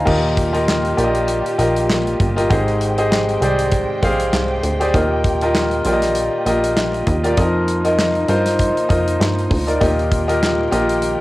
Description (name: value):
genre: piano-driven pop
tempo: 99 BPM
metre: 4/4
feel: swing 56% on 16ths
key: Eb major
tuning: A4 = 440 Hz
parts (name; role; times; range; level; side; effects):
- bright concert grand piano; accompaniment; 0.0-11.2 s; Ab2 to Bb5; -17 LUFS; left 1 dB; none
- warm studio string section; sustained chords; 0.0-11.2 s; Eb3 to G5; -29 LUFS; right 3 dB; none
- plucky analog bass; bass; 0.0-11.2 s; G1 to G2; -21 LUFS; equal; none
- modern studio drum kit; drums; 0.1-11.2 s; crash cymbal, handclaps, hi-hat, kick drum, snare drum; -22 LUFS; equal; cassette tape
room: light reverb, small room reverb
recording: home recording on cassette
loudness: -15 LUFS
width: side -18 dB against mid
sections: 0.1-11.2 A section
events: none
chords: 0.1 Ebadd9; 2.5 Abmaj7; 4.9 Ebadd9; 7.4 Bbsus4/F; 9.8 Ebadd9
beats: | 0.07 0.68 1.29 1.90 | 2.51 3.12 3.72 4.33 | 4.94 5.55 6.16 6.77 | 7.38 7.99 8.59 9.20 | 9.81 10.42 11.03